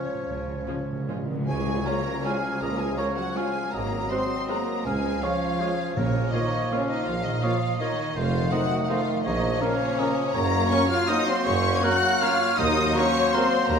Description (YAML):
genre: classical, orchestral ballroom waltz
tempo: 141-178 BPM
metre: 3/4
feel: rubato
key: Db major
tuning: A4 = 440 Hz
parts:
  - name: warm symphonic violin section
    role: melody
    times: 0.0-13.8 s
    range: Db5 to Ab6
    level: -31 LUFS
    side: left 4 dB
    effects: none
  - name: clear oboe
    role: second line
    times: 0.0-13.8 s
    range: Db4 to F5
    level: -33 LUFS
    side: right 2 dB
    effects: none
  - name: hollow concert flute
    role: second line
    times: 0.0-13.8 s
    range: Db5 to Gb6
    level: -32 LUFS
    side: left 2 dB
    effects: none
  - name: warm clarinet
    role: second line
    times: 0.0-13.8 s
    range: A3 to Db4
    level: -34 LUFS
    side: left 1 dB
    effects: none
  - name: mellow bassoon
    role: accompaniment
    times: 0.0-13.8 s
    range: Eb3 to Gb3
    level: -32 LUFS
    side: equal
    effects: none
  - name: mellow French horn section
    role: sustained chords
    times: 0.0-13.5 s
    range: Ab3 to Gb4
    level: -36 LUFS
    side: left 3 dB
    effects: none
  - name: timpani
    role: percussion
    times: 0.0-1.5, 6.0-6.5 s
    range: Bb2 to Db3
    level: -32 LUFS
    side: equal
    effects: none
  - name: rich studio cello section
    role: bass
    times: 0.3-13.8 s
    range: Db3 to Gb4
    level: -31 LUFS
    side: equal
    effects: none
  - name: warm studio double bass section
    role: bass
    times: 0.3-13.8 s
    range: F1 to Gb2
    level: -31 LUFS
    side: right 2 dB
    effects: none
  - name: rich studio violin section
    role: second line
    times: 0.7-13.8 s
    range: Db4 to Gb5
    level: -32 LUFS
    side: left 1 dB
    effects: none
  - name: rich symphonic viola section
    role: accompaniment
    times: 0.7-13.4 s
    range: F3 to Gb4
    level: -37 LUFS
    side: right 2 dB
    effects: none
  - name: warm tuba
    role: bass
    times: 1.5-13.8 s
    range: F1 to Eb2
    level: -33 LUFS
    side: right 4 dB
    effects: none
  - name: tam-tam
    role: percussion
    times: 1.5-2.9 s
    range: none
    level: -39 LUFS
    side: left 3 dB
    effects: none
  - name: dark trumpet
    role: stabs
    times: 1.9-13.5 s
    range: Bb4 to Db5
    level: -34 LUFS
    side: right 2 dB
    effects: none
room: wet scoring stage reverb, RT60 1.8 s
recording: minimal, uncompressed stereo recording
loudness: -22 LUFS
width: side -6 dB against mid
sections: 0.0-1.5 A section; 1.5-13.8 A section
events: timpani fill 0.0-1.5; band accent 1.5-1.9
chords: 0.0 Db; 3.7 Ab9; 4.9 Db; 6.0 Bbm; 8.2 F7; 9.2 Bbm; 10.3 Gb; 12.6 Ebm